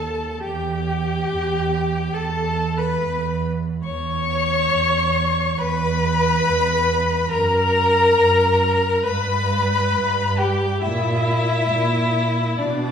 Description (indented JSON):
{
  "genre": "classical, slow romantic movement for string quartet",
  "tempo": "69 BPM",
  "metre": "4/4",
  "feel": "rubato",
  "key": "E minor",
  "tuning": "A4 = 440 Hz",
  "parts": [
    { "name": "rich violin", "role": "melody", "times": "0.0-12.9 s", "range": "D5 to C#6", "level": "-24 LUFS", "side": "left 5 dB", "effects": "none" },
    { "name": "rich violin", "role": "second line", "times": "0.0-12.9 s", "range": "D4 to C#5", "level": "-25 LUFS", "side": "left 3 dB", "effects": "none" },
    { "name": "clear viola", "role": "accompaniment", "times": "0.0-12.9 s", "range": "D4 to C#5", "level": "-23 LUFS", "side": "right 1 dB", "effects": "none" },
    { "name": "rich cello", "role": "bass", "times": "0.0-12.9 s", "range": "D#2 to B2", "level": "-23 LUFS", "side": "right 3 dB", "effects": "none" }
  ],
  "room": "wet recital hall reverb, RT60 1.5 s",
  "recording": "heard from further back in the room, small room ambience",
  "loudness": "-18 LUFS",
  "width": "side -8 dB against mid",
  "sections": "0.0-12.9 A section",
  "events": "none",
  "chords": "0.4 Em; 7.3 F#; 9.0 G; 10.8 N.C.",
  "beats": "| 0.43 1.29 2.15 2.99 | 3.85 4.71 5.58 6.43 | 7.30 8.18 9.05 9.94 | 10.82 11.70 12.59"
}